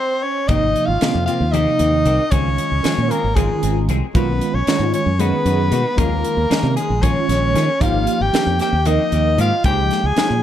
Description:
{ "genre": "electric jazz fusion", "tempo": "230 BPM (eighths)", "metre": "7/8", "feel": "straight", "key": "Ab major", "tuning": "A4 = 439 Hz", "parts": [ { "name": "bright soprano saxophone", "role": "melody", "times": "0.0-10.4 s", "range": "Ab4 to Ab5", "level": "-21 LUFS", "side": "left 3 dB", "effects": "none" }, { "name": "breathy tenor saxophone", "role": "second line", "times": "0.0-10.4 s", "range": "Ab3 to Ab4", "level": "-24 LUFS", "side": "right 5 dB", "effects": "none" }, { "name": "tine electric piano", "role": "accompaniment", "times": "0.5-10.4 s", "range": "C3 to Bb4", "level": "-22 LUFS", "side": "right 1 dB", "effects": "medium stereo tremolo, phaser" }, { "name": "clean electric guitar", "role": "stabs", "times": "0.5-10.3 s", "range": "Eb3 to Ab4", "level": "-28 LUFS", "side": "left 8 dB", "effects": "lush chorus" }, { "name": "modern bright fingered electric bass", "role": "bass", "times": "0.5-10.4 s", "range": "Ab1 to Eb3", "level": "-20 LUFS", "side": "equal", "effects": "none" }, { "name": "crisp fusion drum kit", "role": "drums", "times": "0.5-10.3 s", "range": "hi-hat, kick drum, snare drum", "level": "-22 LUFS", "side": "right 1 dB", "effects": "none" } ], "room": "light reverb, studio ambience", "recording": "dark, warm production", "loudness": "-15 LUFS", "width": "side -11 dB against mid", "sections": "0.5-10.4 A section", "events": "tine electric piano fill 0.0-0.5; band accent 0.0-0.5; drum fill 0.1-0.5", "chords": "0.5 Abmaj9; 2.3 Dbmaj7; 4.2 Bmaj7; 6.0 Eb9sus4; 7.8 Abmaj9; 9.6 Dbmaj7" }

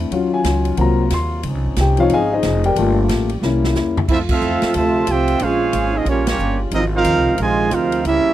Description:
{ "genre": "jazz, big band swing", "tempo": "182 BPM", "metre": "4/4", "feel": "swing 63% on 8ths", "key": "unclear", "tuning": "A4 = 440 Hz", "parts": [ { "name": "warm concert grand piano", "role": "accompaniment", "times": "0.0-3.9 s", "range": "F3 to C6", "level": "-18 LUFS", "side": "left 4 dB", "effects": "none" }, { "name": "clear trombone section", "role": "sustained chords", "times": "0.0-8.3 s", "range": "C3 to G4", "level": "-27 LUFS", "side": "left 1 dB", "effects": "none" }, { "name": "upright bass", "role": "bass", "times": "0.0-8.3 s", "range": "F1 to F2", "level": "-20 LUFS", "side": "right 1 dB", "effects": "none" }, { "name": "swinging big-band drum kit", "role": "drums", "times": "0.1-8.1 s", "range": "crash cymbal, hi-hat, kick drum, ride cymbal, snare drum, toms", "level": "-26 LUFS", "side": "equal", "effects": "none" }, { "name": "warm trumpet section", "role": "melody", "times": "4.1-8.3 s", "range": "Bb3 to A5", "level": "-20 LUFS", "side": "right 2 dB", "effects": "none" }, { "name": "warm trombone section", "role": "second line", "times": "4.1-8.3 s", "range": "C3 to G4", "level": "-19 LUFS", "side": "right 4 dB", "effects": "tape echo" } ], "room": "light reverb", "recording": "dry, close 1970s-style studio recording", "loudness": "-15 LUFS", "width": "side -13 dB against mid", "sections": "0.0-4.1 A section; 4.1-8.3 B section", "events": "grand piano solo 0.0-4.1; drum fill 3.4-4.1; band accent 4.2, 6.2", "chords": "0.1 Ebm9; 0.8 Ebm69/C; 1.4 Dbmaj9; 2.8 Gm9; 3.4 C7b9; 4.1 Fmaj7; 5.4 Bbm9; 6.1 Gm7b5; 6.7 Ab69" }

